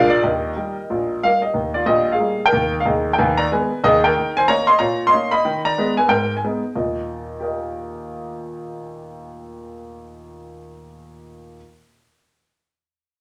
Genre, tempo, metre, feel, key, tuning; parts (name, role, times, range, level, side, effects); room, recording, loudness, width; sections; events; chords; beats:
jazz, stride piano; 184 BPM; 4/4; swing 61% on 8ths; Eb major; A4 = 443 Hz
clear concert grand piano; solo; 0.0-11.6 s; Bb1 to C6; -20 LUFS; equal
wet club reverb, RT60 0.8 s; -19 LUFS; mono
0.0-1.5 A section; 1.5-6.7 B section; 6.7-9.4 C section
0.2 Eb; 2.8 Abm/Eb; 4.1 Eb5; 5.4 Abm/Eb; 6.7 Eb
| 0.24 0.56 0.89 1.22 | 1.54 1.86 2.19 2.52 | 2.84 3.17 3.49 3.81 | 4.14 4.47 4.79 5.12 | 5.44 5.77 6.09 6.42 | 6.74 7.07 7.40 7.72 | 8.05 8.37 8.70 9.03